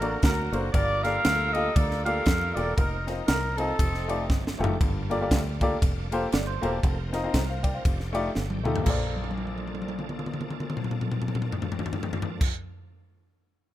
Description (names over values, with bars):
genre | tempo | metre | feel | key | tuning
uptempo gospel | 118 BPM | 4/4 | swing 59% on 8ths | Bb major | A4 = 440 Hz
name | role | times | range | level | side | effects
mellow horn section | melody | 0.0-4.6 s | C4 to F5 | -27 LUFS | equal | none
warm concert grand piano | accompaniment | 0.0-12.5 s | Bb1 to G5 | -31 LUFS | left 2 dB | none
bright tonewheel organ | sustained chords | 0.0-12.5 s | F3 to G5 | -41 LUFS | right 3 dB | slow rotary speaker, chorus vibrato
fingered electric bass | bass | 0.0-12.5 s | E1 to F2 | -30 LUFS | equal | none
crisp fusion drum kit | drums | 0.0-12.5 s | crash cymbal, kick drum, ride cymbal, snare drum, toms | -27 LUFS | equal | none
clean electric guitar | second line | 6.3-7.0 s | A4 to D5 | -36 LUFS | right 10 dB | none
room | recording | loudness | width
small room ambience | rough home demo mix | -24 LUFS | side -13 dB against mid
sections
0.0-4.8 A section; 4.8-8.9 B section; 8.9-12.9 C section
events
drum fill 4.3-4.8, 8.4-8.9, 9.1-12.4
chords
0.0 D7b13; 0.7 Gm9; 2.8 F7sus4; 3.8 F13; 4.8 Gm9; 6.8 F7sus4; 7.9 F13; 8.9 Bbmaj7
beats
0.23 | 0.74 1.25 1.76 2.27 | 2.77 3.28 3.79 4.30 | 4.80 5.31 5.82 6.33 | 6.84 7.35 7.85 8.36 | 8.87 9.38 9.89 10.39 | 10.90 11.41 11.92 12.43